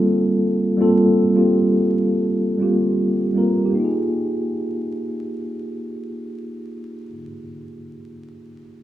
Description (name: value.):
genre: R&B.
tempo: 76-87 BPM.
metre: 4/4.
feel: swing 58% on 16ths.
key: F minor.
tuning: A4 = 440 Hz.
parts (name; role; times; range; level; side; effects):
mellow tine electric piano; accompaniment; 0.0-8.8 s; G3 to Bb4; -19 LUFS; equal; medium stereo tremolo.
room: moderate plate reverb, RT60 3.1 s.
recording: rough home demo mix, vinyl crackle, small room ambience.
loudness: -17 LUFS.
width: side -13 dB against mid.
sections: 0.0-3.7 A section; 3.7-6.9 B section.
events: slowing down 0.0-3.7.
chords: 0.0 Gm11; 3.7 Fm11.